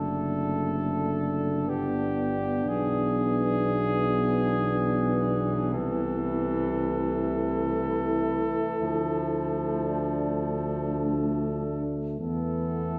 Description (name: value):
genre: classical, hymn-like piece for brass band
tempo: 47-61 BPM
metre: 3/4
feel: rubato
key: A minor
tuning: A4 = 439 Hz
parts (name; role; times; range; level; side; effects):
- warm cornet; melody; 0.0-13.0 s; G4 to A4+21c; -35 LUFS; equal; none
- dark French horn section; second line; 0.0-13.0 s; B3 to E4; -34 LUFS; equal; none
- bright trombone; accompaniment; 0.0-13.0 s; D3 to F3; -37 LUFS; equal; none
- warm euphonium; accompaniment; 0.0-13.0 s; A3 to B3; -36 LUFS; equal; none
- mellow tuba; bass; 0.0-13.0 s; F#1 to E2; -32 LUFS; equal; none
room: wet recital hall reverb, RT60 1.7 s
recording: heard from further back in the room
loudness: -27 LUFS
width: mono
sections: 0.0-13.0 A section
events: none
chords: 0.0 D/F#; 1.7 G; 2.7 E7/B; 5.8 Am/C; 8.8 Dm; 12.2 Esus4